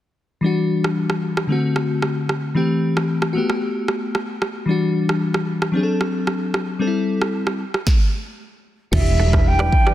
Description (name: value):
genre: afrobeats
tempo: 113 BPM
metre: 4/4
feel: straight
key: unclear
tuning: A4 = 438 Hz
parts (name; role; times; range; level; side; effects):
- crystalline FM electric piano; accompaniment; 0.4-9.9 s; D3 to A4; -20 LUFS; left 2 dB; chorus
- afro-pop drum kit; drums; 0.8-9.9 s; crash cymbal, kick drum, rim click, snare drum; -22 LUFS; right 1 dB; soft clipping on snare
- mellow concert flute; melody; 8.9-9.9 s; E5 to G5; -21 LUFS; right 1 dB; none
- hollow soft pad; sustained chords; 8.9-9.9 s; E3 to E4; -30 LUFS; equal; chorus
- fingered electric bass; bass; 8.9-9.7 s; E1; -18 LUFS; equal; none
- congas; percussion; 8.9-9.7 s; none; -28 LUFS; right 4 dB; none
- direct-recorded clean electric guitar; riff; 9.2-9.9 s; F#4 to D5; -29 LUFS; right 6 dB; tremolo
room: light reverb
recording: dense, heavily limited modern master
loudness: -18 LUFS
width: side -13 dB against mid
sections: 0.4-8.9 A section; 8.9-9.9 B section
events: hi-hats muted 8.9-9.9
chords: 0.4 Em9; 1.5 D7; 2.6 C6; 3.4 Gmaj9; 4.7 Em9; 5.7 D7; 6.8 C6; 7.6 N.C.; 8.9 Em7